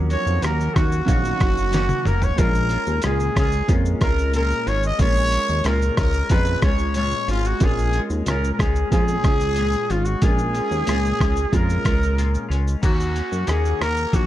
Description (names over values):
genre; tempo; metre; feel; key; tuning
indie pop, bedroom pop; 92 BPM; 4/4; straight; unclear; A4 = 440 Hz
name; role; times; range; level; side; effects
dark upright piano; accompaniment; 0.0-12.8 s; F3 to Bb5; -30 LUFS; right 4 dB; cassette tape
semi-hollow electric guitar; accompaniment; 0.0-14.3 s; Bb2 to Gb4; -30 LUFS; left 4 dB; lush chorus, warbly pitch drift
chorused synth bass; bass; 0.0-14.3 s; F1 to Gb2; -22 LUFS; equal; none
growling trumpet; melody; 0.1-14.3 s; F4 to Eb5; -24 LUFS; equal; lush chorus, slapback echo
lo-fi sampler-style drum kit; drums; 0.1-14.3 s; crash cymbal, hi-hat, kick drum, rim click, shaker, snare drum, toms; -22 LUFS; equal; none
room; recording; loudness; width
little or no reverb; dark, warm production; -18 LUFS; side -13 dB against mid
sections
0.0-12.8 A section; 12.8-14.3 B section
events
drum fill 1.7-2.4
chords
0.0 Ebm7; 2.4 Bbm7; 12.8 Ebm7